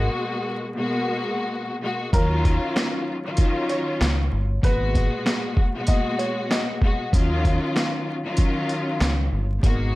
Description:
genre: hip hop, boom-bap hip-hop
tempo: 96 BPM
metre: 4/4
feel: swing 60% on 16ths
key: Eb minor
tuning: A4 = 440 Hz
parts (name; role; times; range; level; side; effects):
- warm studio string section; accompaniment; 0.0-10.0 s; Bb2 to Gb4; -25 LUFS; left 1 dB; cassette tape, high-pass filter, low-pass filter
- deep dub fingered electric bass; bass; 0.0-10.0 s; G1 to Eb2; -23 LUFS; equal; none
- dark upright piano; melody; 2.1-6.8 s; Bb4 to Eb5; -30 LUFS; equal; high-pass filter, low-pass filter, digital delay
- boom bap sampler-style drum kit; drums; 2.1-9.8 s; hi-hat, kick drum, snare drum; -22 LUFS; equal; none
room: light reverb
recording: vinyl crackle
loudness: -20 LUFS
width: side -19 dB against mid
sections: 0.0-10.0 A section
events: none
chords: 0.0 Abm9; 2.1 Ebm9; 4.6 Abm9; 7.1 Ebm9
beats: 0.26 0.88 1.50 | 2.13 2.75 3.38 4.00 | 4.63 5.25 5.88 6.50 | 7.13 7.75 8.38 9.01 | 9.63

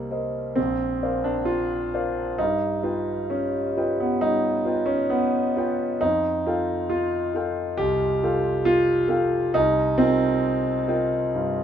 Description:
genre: classical, impressionist solo piano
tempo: 67 BPM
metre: 4/4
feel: rubato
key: C dorian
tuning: A4 = 441 Hz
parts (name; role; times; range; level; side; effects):
- clear concert grand piano; solo; 0.0-11.6 s; Bb1 to G5; -21 LUFS; equal; none
room: moderate large studio reverb, RT60 0.8 s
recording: minimal, uncompressed stereo recording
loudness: -21 LUFS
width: side -9 dB against mid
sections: 0.0-11.6 A section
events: none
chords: 0.0 Cm7; 0.6 Bbadd9; 2.4 Gaug7; 6.0 F9; 9.6 Cm7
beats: 0.57 1.47 | 2.38 3.31 4.22 5.12 | 6.03 6.91 7.79 8.66 | 9.55 10.45 11.35

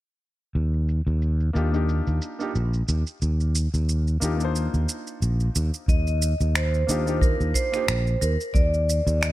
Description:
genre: sunset chillout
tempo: 90 BPM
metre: 4/4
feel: swing 55% on 16ths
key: Eb major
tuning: A4 = 440 Hz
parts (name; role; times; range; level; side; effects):
- sustaining fretless electric bass; bass; 0.6-9.3 s; Bb1 to Eb2; -22 LUFS; equal; none
- electronic shaker and finger snaps; drums; 0.6-9.3 s; none; -30 LUFS; right 2 dB; overdrive, low-pass filter on perc, low-pass filter on snare
- warm grand piano; accompaniment; 1.5-7.8 s; Bb3 to C5; -30 LUFS; moving between left 6 dB and right 4 dB; auto-pan, tape echo
- vibraphone with medium hard mallets; melody; 5.9-9.3 s; Bb4 to Eb5; -26 LUFS; right 2 dB; none
- electronic kick drum; drums; 5.9-8.7 s; none; -21 LUFS; equal; none
room: studio ambience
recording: none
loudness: -21 LUFS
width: side -16 dB against mid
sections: 0.6-5.9 A section; 5.9-9.3 B section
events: filter sweep on fretless electric bass 0.6-5.9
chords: 0.6 Ebmaj9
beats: | 0.55 1.22 1.89 2.55 | 3.22 3.88 4.55 5.22 | 5.88 6.55 7.22 7.88 | 8.55 9.22

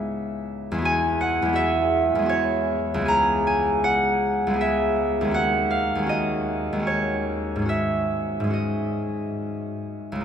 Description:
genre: classical, solo harp piece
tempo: 79 BPM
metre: 3/4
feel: uneven beats, rubato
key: C# minor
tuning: A4 = 440 Hz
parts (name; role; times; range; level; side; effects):
- concert harp; solo; 0.0-10.2 s; C#2 to A#5; -21 LUFS; equal; none
room: wet cathedral reverb, RT60 6.9 s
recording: minimal, uncompressed stereo recording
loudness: -21 LUFS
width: side -8 dB against mid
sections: 0.0-10.2 A section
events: none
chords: 0.0 C#m9; 0.9 E69; 3.1 C#m7; 5.3 D#m11; 7.7 G#7sus4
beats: 0.15 | 0.86 1.58 2.30 | 3.10 3.85 4.59 | 5.33 6.08 6.86 | 7.69 8.54 9.40

